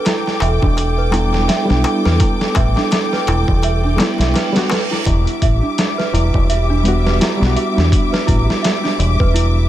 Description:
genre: trip hop.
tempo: 84 BPM.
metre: 4/4.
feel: swing 57% on 16ths.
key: E minor.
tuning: A4 = 441 Hz.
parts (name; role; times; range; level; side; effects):
dark studio string section; sustained chords; 0.0-9.7 s; G3 to D6; -22 LUFS; equal; none.
small celesta; arpeggios; 0.0-9.7 s; D4 to E5; -23 LUFS; right 4 dB; tape echo.
dusty soul sampler-style drum kit; drums; 0.1-9.5 s; hi-hat, kick drum, snare drum; -18 LUFS; equal; overdrive, vintage 12-bit sampler grit.
darbuka; percussion; 0.1-5.0 s; none; -27 LUFS; left 4 dB; none.
deep dub fingered electric bass; bass; 0.4-9.7 s; E1 to E2; -16 LUFS; equal; none.
reed electric piano; accompaniment; 1.1-9.7 s; G3 to F#4; -22 LUFS; equal; overdrive, fast tremolo, vintage 12-bit sampler grit, tape echo.
reverse cymbal; sound effects; 3.9-5.1 s; none; -28 LUFS; right 6 dB; none.
room: little or no reverb.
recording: none.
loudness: -13 LUFS.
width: side -13 dB against mid.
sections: 0.0-5.1 A section; 5.1-9.7 B section.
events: reverse cymbal 3.9-5.1.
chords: 0.0 Em7.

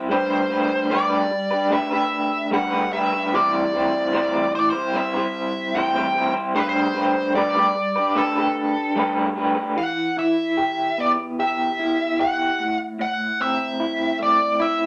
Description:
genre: rock.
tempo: 74 BPM.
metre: 4/4.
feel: straight.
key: A dorian.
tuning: A4 = 441 Hz.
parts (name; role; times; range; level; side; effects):
electric guitar through a small old amp; riff; 0.0-14.9 s; A2 to C5; -24 LUFS; equal; tremolo.
dark smooth lead guitar; melody; 0.1-14.9 s; A4 to G5; -25 LUFS; equal; wah, overdrive.
room: wet studio reverb, RT60 0.5 s.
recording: none.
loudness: -22 LUFS.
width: mono.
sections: 0.0-9.8 A section; 9.8-14.9 B section.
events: none.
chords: 0.1 Gadd9; 3.3 Am7; 6.6 Gadd9; 9.8 Em; 12.6 Am.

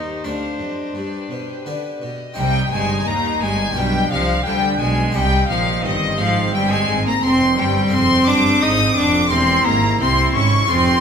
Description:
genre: classical, baroque-style concerto movement with solo episodes.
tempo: 86 BPM.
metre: 4/4.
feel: straight.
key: C minor.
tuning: A4 = 440 Hz.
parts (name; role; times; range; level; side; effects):
rich cello; melody; 0.0-11.0 s; Eb3 to Eb4; -20 LUFS; left 1 dB; none.
rich chamber violin section; melody; 0.0-11.0 s; B4 to Eb6; -23 LUFS; left 5 dB; none.
rich chamber violin section; second line; 0.0-11.0 s; B4 to Eb6; -23 LUFS; equal; none.
harpsichord; accompaniment; 0.0-11.0 s; D2 to Bb4; -30 LUFS; left 2 dB; none.
rich symphonic viola section; accompaniment; 0.0-11.0 s; C4 to G4; -26 LUFS; right 2 dB; none.
rich symphonic cello section; bass; 0.0-11.0 s; D2 to D3; -25 LUFS; right 3 dB; none.
rich chamber double bass section; bass; 2.4-11.0 s; E1 to Eb2; -24 LUFS; right 2 dB; none.
room: wet recital hall reverb, RT60 1.4 s.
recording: minimal, uncompressed stereo recording.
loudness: -15 LUFS.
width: side -7 dB against mid.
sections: 0.0-2.4 A section; 2.4-11.0 B section.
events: none.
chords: 0.0 Gsus4; 1.0 G; 2.4 Cm; 3.8 G7b9/B; 5.2 Cm; 7.9 Fm; 9.3 C7/E.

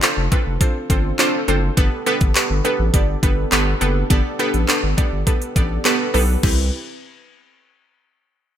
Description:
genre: dance-pop.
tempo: 103 BPM.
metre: 4/4.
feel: straight.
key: unclear.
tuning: A4 = 442 Hz.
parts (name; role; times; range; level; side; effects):
glassy wavetable pluck; accompaniment; 0.0-6.7 s; B3 to D5; -20 LUFS; right 1 dB; chorus, sidechain pumping.
pop drum kit; drums; 0.0-6.6 s; crash cymbal, handclaps, hi-hat, kick drum; -18 LUFS; equal; none.
saturated sub bass; bass; 0.2-6.7 s; F1 to C2; -20 LUFS; equal; sidechain pumping.
room: light reverb.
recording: bright 1980s-style digital production.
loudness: -16 LUFS.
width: side -10 dB against mid.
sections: 0.0-6.4 A section; 6.4-8.6 B section.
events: drop 0.0-6.4.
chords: 0.0 F6; 1.8 Gadd9; 6.4 Cmaj7.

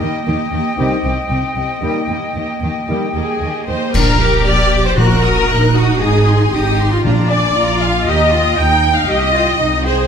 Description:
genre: cinematic, heroic adventure film score.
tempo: 117 BPM.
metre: 4/4.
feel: straight.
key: unclear.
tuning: A4 = 440 Hz.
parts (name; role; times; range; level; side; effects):
warm symphonic violin section; melody; 0.0-10.1 s; Eb5 to Gb6; -26 LUFS; left 2 dB; none.
bright concert flute; second line; 0.0-3.6 s; G5; -24 LUFS; left 4 dB; none.
warm oboe; second line; 0.0-3.6 s; Eb5; -28 LUFS; left 1 dB; none.
warm symphonic violin section; second line; 0.0-10.1 s; F4 to G5; -24 LUFS; left 3 dB; none.
rich symphonic viola section; accompaniment; 0.0-10.1 s; Bb3 to G5; -19 LUFS; equal; none.
rich symphonic double bass section; bass; 0.0-10.0 s; Ab1 to Eb2; -18 LUFS; right 2 dB; none.
warm symphonic cello section; bass; 0.0-10.1 s; C3 to Ab4; -21 LUFS; equal; none.
clear trombone section; sustained chords; 0.8-3.1 s; Eb3 to G3; -27 LUFS; right 3 dB; none.
dark French horn section; sustained chords; 0.8-3.1 s; Bb3 to Eb4; -26 LUFS; left 6 dB; none.
warm trumpet section; stabs; 0.8-10.1 s; F4 to G5; -21 LUFS; equal; none.
clash cymbals and concert bass drum; percussion; 3.9-4.9 s; none; -21 LUFS; equal; none.
timpani; percussion; 3.9-7.8 s; Bb2; -20 LUFS; left 1 dB; none.
room: moderate scoring stage reverb, RT60 1.7 s.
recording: none.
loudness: -12 LUFS.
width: side -7 dB against mid.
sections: 0.0-3.9 A section; 3.9-10.1 B section.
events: band accent 3.9-4.5.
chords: 0.0 Eb; 0.8 Cm; 1.8 Eb; 3.9 Bb; 5.0 Ebm/Bb; 6.0 Ab; 7.0 Bb7; 8.1 Eb; 9.1 Cm.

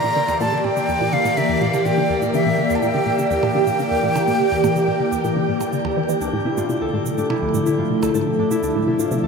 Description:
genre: ambient, sequencer-driven space music.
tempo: 124 BPM.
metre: 4/4.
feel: straight.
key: unclear.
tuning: A4 = 440 Hz.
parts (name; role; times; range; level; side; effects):
breathy mellow silver concert flute; melody; 0.0-5.7 s; E5 to Bb5; -24 LUFS; equal; ping-pong delay.
phased analog pad; sustained chords; 0.0-9.3 s; D3 to D5; -20 LUFS; right 1 dB; phaser, chorus.
resonant blip pluck; riff; 0.0-9.3 s; D2 to E3; -26 LUFS; left 1 dB; chorus, ping-pong delay.
shaker and percussion blips; percussion; 0.3-9.2 s; none; -37 LUFS; right 5 dB; overdrive, ping-pong delay.
concert harp; arpeggios; 6.2-9.3 s; D4 to A4; -21 LUFS; left 1 dB; auto-pan, ping-pong delay.
room: wet shimmer reverb, RT60 8.7 s.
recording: none.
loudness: -17 LUFS.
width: side -5 dB against mid.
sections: 0.0-9.3 A section.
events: fade-in on drum 0.0-9.3.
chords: 0.0 Edim; 6.2 Dmadd9.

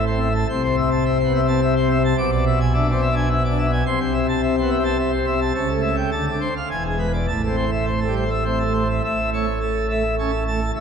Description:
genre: classical, organ toccata.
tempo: 106 BPM.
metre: 3/4.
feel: straight.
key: A minor.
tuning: A4 = 439 Hz.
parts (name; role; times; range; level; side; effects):
pipe organ, plenum; solo; 0.0-10.8 s; C#1 to D6; -18 LUFS; equal; none.
room: wet church reverb, RT60 3.2 s.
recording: dark, warm production.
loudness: -18 LUFS.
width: side -6 dB against mid.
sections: 0.0-9.0 A section; 9.0-10.8 B section.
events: none.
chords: 0.5 Am/C; 2.2 E7/B; 3.9 Am/C; 5.6 A7/C#; 6.1 Dm7; 6.7 E7; 7.3 Am; 9.0 A.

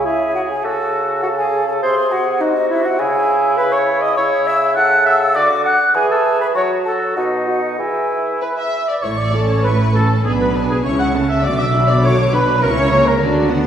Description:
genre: quick classical-period movement for symphony orchestra.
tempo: 101 BPM.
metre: 2/4.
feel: rubato.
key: C# minor, A major from 4.2 s.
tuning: A4 = 440 Hz.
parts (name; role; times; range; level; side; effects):
clear clarinet; second line; 0.0-8.4 s; D#4 to F#5; -20 LUFS; left 1 dB; none.
mellow hollow silver concert flute; second line; 0.0-8.4 s; D#5 to F#6; -18 LUFS; equal; none.
warm bassoon; accompaniment; 0.0-8.7 s; B2 to F#3; -20 LUFS; right 2 dB; none.
warm oboe; second line; 0.1-13.2 s; D#4 to F#5; -21 LUFS; equal; none.
rich studio violin section; second line; 8.4-13.2 s; G#4 to F#5; -22 LUFS; equal; none.
warm studio violin section; melody; 9.0-13.7 s; D5 to D6; -28 LUFS; left 1 dB; none.
warm studio viola section; accompaniment; 9.0-13.7 s; D3 to A4; -20 LUFS; right 1 dB; none.
warm studio cello section; bass; 9.0-13.7 s; A2 to D3; -20 LUFS; equal; none.
warm studio double bass section; bass; 9.0-13.7 s; A1 to D2; -20 LUFS; right 1 dB; none.
room: wet recital hall reverb, RT60 1.7 s.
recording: recorded in a church or concert hall.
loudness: -14 LUFS.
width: side -9 dB against mid.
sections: 0.0-9.0 A section; 9.0-13.7 B section.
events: none.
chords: 0.0 C#m; 1.8 G#7/B#; 3.0 C#m; 5.4 D; 5.9 E; 6.6 N.C.; 7.2 B; 7.8 N.C.; 9.0 A; 10.3 G#dim/B; 10.8 A/C#; 11.4 Bm; 12.6 A#dim/C#.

